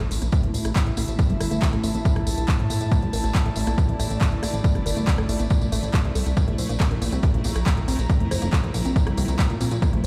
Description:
psychedelic trance; 139 BPM; 4/4; straight; A4 = 440 Hz
pulsing gated texture; sustained chords; 0.0-10.1 s; A3 to E4; -37 LUFS; equal; chorus, built-in reverb, sidechain pumping
woody wave-folded pluck; riff; 0.0-10.1 s; G3 to C5; -34 LUFS; equal; chorus, sidechain pumping, delay
plucky analog bass; bass; 0.0-10.1 s; F1 to Bb2; -27 LUFS; equal
big-room dance drum kit; drums; 0.0-10.1 s; handclaps, hi-hat, rim click; -35 LUFS; equal
airy breathy pad; texture; 0.1-10.1 s; F3 to Bb5; -35 LUFS; equal; chorus, sidechain pumping
tambourine; percussion; 0.1-10.1 s; -39 LUFS; equal
electronic kick drum; drums; 0.3-9.9 s; -22 LUFS; equal
digital ambience; played on a big sound system in a bare room, stone room reverb; -22 LUFS; mono
0.0-10.1 A section
filter sweep on synth arpeggio sound 0.0-10.1
0.0 A5; 6.4 Bb5

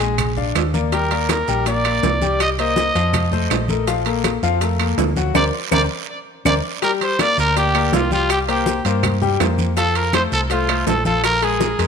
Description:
latin, salsa; 163 BPM; 4/4; straight; A4 = 439 Hz
bright concert grand piano; accompaniment; 0.0-11.9 s; F3 to Ab5; -22 LUFS; left 10 dB
hollow-body short-scale fingered electric bass; bass; 0.0-11.9 s; Bb1 to G2; -22 LUFS; right 1 dB
congas; percussion; 0.0-11.9 s; -27 LUFS; equal
guiro; percussion; 0.0-11.9 s; -33 LUFS; right 15 dB
maracas; percussion; 0.0-11.9 s; -36 LUFS; left 15 dB
timbales; percussion; 0.0-11.9 s; -25 LUFS; right 14 dB
claves; percussion; 0.2-11.4 s; -28 LUFS; right 13 dB
growling trumpet; melody; 0.9-11.8 s; F4 to Eb5; -20 LUFS; right 1 dB; tape echo
bongos; percussion; 0.9-11.9 s; -29 LUFS; left 12 dB
moderate echo chamber reverb, RT60 1.7 s, small room ambience; 1960s-style stereo with parts hard left and right; -16 LUFS; side -6 dB against mid
0.0-6.8 A section; 6.8-11.9 B section
drum fill 5.4-6.8; band accent 5.4-6.8
0.2 Bb7; 0.9 Ebmaj7; 2.4 Cm7; 3.1 F; 3.9 Bbmaj7; 5.4 Bbadd9/D; 6.8 Gm; 8.3 C5; 9.8 F; 11.2 Bb5

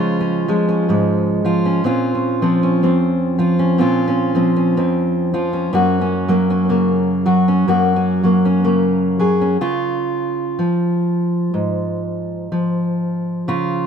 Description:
folk, solo fingerstyle acoustic guitar; 62 BPM; 4/4; swing 58% on 8ths; Db major; A4 = 439 Hz
fingerpicked steel-string acoustic guitar; solo; 0.0-13.9 s; F2 to Ab4; -15 LUFS; equal
moderate plate reverb, RT60 3.1 s; minimal, uncompressed stereo recording; -15 LUFS; side -7 dB against mid
0.0-9.6 A section; 9.6-13.9 B section
0.0 Db; 1.9 Bbmadd9; 5.7 Gb; 9.6 Db

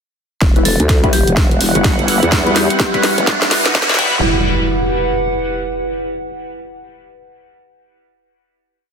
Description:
bass house; 126 BPM; 4/4; swing 61% on 16ths; E minor; A4 = 440 Hz
sweeping resonant pad; sustained chords; 0.4-4.2 s; G3 to F#5; -22 LUFS; right 4 dB; chorus, sidechain pumping
vowel-sweep wobble bass; bass; 0.4-4.2 s; E1 to E2; -17 LUFS; equal; chorus, overdrive, sidechain pumping
electronic kick drum; drums; 0.4-4.1 s; -15 LUFS; equal
house drum kit; drums; 0.4-4.1 s; crash cymbal, hi-hat, snare drum; -18 LUFS; equal
riser and impact; sound effects; 1.6-5.9 s; -22 LUFS; equal
warbly tape-like pad; texture; 1.5-6.1 s; G3 to F#5; -21 LUFS; equal; chorus, built-in reverb, phaser, sidechain pumping
band-passed chord stab; stabs; 0.6-4.2 s; G3 to B4; -22 LUFS; left 4 dB; phaser, wide subtle chorus, sidechain pumping, dub echo
vibraphone with hard mallets; melody; 0.7-2.9 s; G4 to A4; -24 LUFS; left 3 dB; dub echo
light reverb; dense, heavily limited modern master, high-pass filter; -12 LUFS; side -6 dB against mid
0.4-4.2 build; 4.2-6.1 final chord
build-up 0.4-4.2; drum fill 0.4-4.2; filter sweep on synth stab 0.4-4.2; filter sweep 0.4-4.2; riser 1.6-4.2
0.4 Emadd9

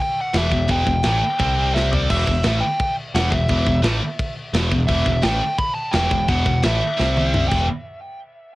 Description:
heavy metal; 172 BPM; 4/4; straight; E minor; A4 = 442 Hz
dark smooth lead guitar; melody; 0.0-7.7 s; D5 to B5; -23 LUFS; equal; overdrive, cassette tape, analog delay
scooped high-gain guitar; riff; 0.3-7.7 s; E2 to C4; -23 LUFS; equal; distortion, cassette tape
growling picked electric bass; bass; 0.3-7.7 s; E1 to C2; -21 LUFS; equal; overdrive
tight metal drum kit; drums; 0.3-7.6 s; crash cymbal, kick drum, snare drum, toms; -24 LUFS; equal; cassette tape
little or no reverb; home recording on cassette; -17 LUFS; side -19 dB against mid
0.0-7.7 A section
drum fill 1.7-2.1, 7.0-7.7
0.0 Em; 1.4 C5; 2.1 Em; 7.0 C5; 7.5 Em; 7.7 N.C.

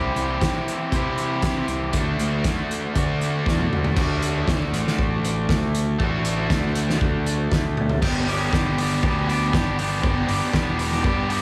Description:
indie rock; 118 BPM; 4/4; straight; G major; A4 = 440 Hz
raw garage guitar; riff; 0.0-11.4 s; E3 to G4; -26 LUFS; equal; overdrive
fuzz fingered electric bass; bass; 0.0-11.4 s; E1 to D3; -28 LUFS; equal; overdrive
loose indie drum kit; drums; 0.2-11.4 s; crash cymbal, hi-hat, kick drum, snare drum, toms; -27 LUFS; equal
light reverb; studio ambience; -22 LUFS; mono
0.0-4.0 A section; 4.0-8.0 B section; 8.0-11.4 C section
drum fill 3.5-4.0, 7.8
0.0 C; 1.9 D; 8.0 G

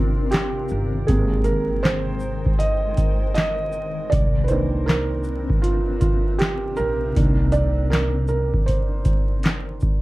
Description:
lo-fi hip hop; 79 BPM; 4/4; swing 63% on 16ths; C minor; A4 = 441 Hz
felt-muted upright piano; accompaniment; 0.0-10.0 s; Eb3 to Eb5; -24 LUFS; right 3 dB; cassette tape, plate reverb
granular cloud pad; sustained chords; 0.0-10.0 s; C3 to G5; -30 LUFS; left 2 dB; built-in reverb
booming analog drum machine; drums; 0.3-10.0 s; handclaps, hi-hat, kick drum, shaker, snare drum; -21 LUFS; equal
upright bass; bass; 0.7-8.5 s; G1 to C2; -24 LUFS; equal
finger snap; percussion; 4.9-9.7 s; -39 LUFS; left 6 dB
moderate small room reverb, RT60 0.5 s; dark, warm production, vinyl crackle; -19 LUFS; side -18 dB against mid
0.0-10.0 A section
felt piano solo 0.0-10.0
0.0 Cm9; 1.1 Abmaj9; 4.1 Cm9

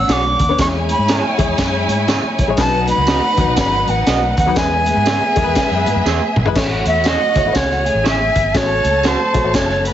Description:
uptempo 1960s-style soul; 121 BPM; 4/4; swing 61% on 8ths; A major; A4 = 436 Hz
breathy concert flute; melody; 0.0-9.9 s; C5 to E6; -17 LUFS; right 1 dB
warm studio violin section; second line; 0.0-9.9 s; B3 to B5; -22 LUFS; equal
clear upright piano; accompaniment; 0.0-9.9 s; F#3 to C#5; -22 LUFS; left 7 dB
vintage muted fingered electric bass; bass; 0.0-9.9 s; F#1 to G#2; -21 LUFS; equal
electric guitar through a small old amp; stabs; 0.1-9.2 s; D4 to E5; -24 LUFS; right 7 dB
crunchy breakbeat drum kit; drums; 0.1-9.9 s; crash cymbal, hi-hat, kick drum, snare drum, toms; -19 LUFS; equal
tambourine; percussion; 0.1-9.7 s; -33 LUFS; right 6 dB
congas; percussion; 0.2-9.9 s; -30 LUFS; right 2 dB
light reverb, studio reverb; heavily compressed radio sound, multiband compression, nothing above 7.9 kHz; -13 LUFS; side -11 dB against mid
0.0-6.6 A section; 6.6-9.9 B section
drum fill 6.1-6.6; flute solo 6.6-9.9
0.0 Bmadd9; 0.6 E6; 2.6 B; 4.6 E; 6.6 A; 8.5 F#m/A

